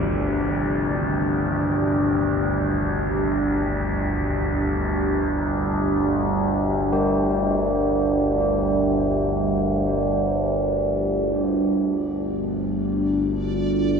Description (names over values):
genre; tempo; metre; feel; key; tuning
dark ambient drone; free time; none; none; unclear; A4 = 438 Hz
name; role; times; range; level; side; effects
deep dark ambient pad; sustained chords; 0.0-14.0 s; G3 to G4; -24 LUFS; right 1 dB; chorus, built-in reverb
old church bells; arpeggios; 0.0-14.0 s; C3 to G4; -30 LUFS; left 2 dB; diffuse ambient delay
overtone-sweeping drone; drone; 0.0-14.0 s; G1 to D2; -22 LUFS; equal; chorus, built-in reverb
backwards swelling texture; texture; 12.2-14.0 s; D5; -39 LUFS; right 6 dB; built-in reverb
room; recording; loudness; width
wet huge ambient reverb, RT60 9.1 s; none; -20 LUFS; side -6 dB against mid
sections
0.0-11.3 A section; 11.3-14.0 B section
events
none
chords
0.0 G5